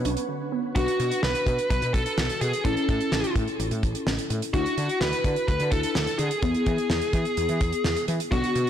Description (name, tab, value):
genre	synth-pop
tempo	127 BPM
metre	4/4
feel	straight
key	B dorian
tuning	A4 = 440 Hz
part	muted felt-like synth keys	accompaniment	0.0-8.7 s	B3 to B4	-30 LUFS	left 2 dB	chorus
part	soft string machine	sustained chords	0.0-0.7 s	B3 to C#5	-38 LUFS	equal	ensemble chorus
part	woody fretless electric bass	bass	0.0-8.7 s	A1 to E3	-29 LUFS	equal	none
part	warbly dusty pluck	arpeggios	0.1-0.7, 8.3-8.4 s	D3 to D4	-33 LUFS	right 7 dB	chorus, digital delay
part	damped 70s drum kit	drums	0.1-8.7 s	hi-hat, kick drum, snare drum	-28 LUFS	equal	none
part	bluesy overdriven lead guitar	melody	0.8-8.7 s	F#4 to B4	-27 LUFS	equal	distortion, digital delay
room	moderate recital hall reverb, RT60 1.5 s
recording	blown-out, overdriven recording, overdrive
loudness	-23 LUFS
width	side -9 dB against mid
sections	0.8-8.7 A section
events	break 0.3-0.8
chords	0.0 Bmadd9; 0.8 Bm; 2.6 A; 4.5 Dadd9; 6.4 E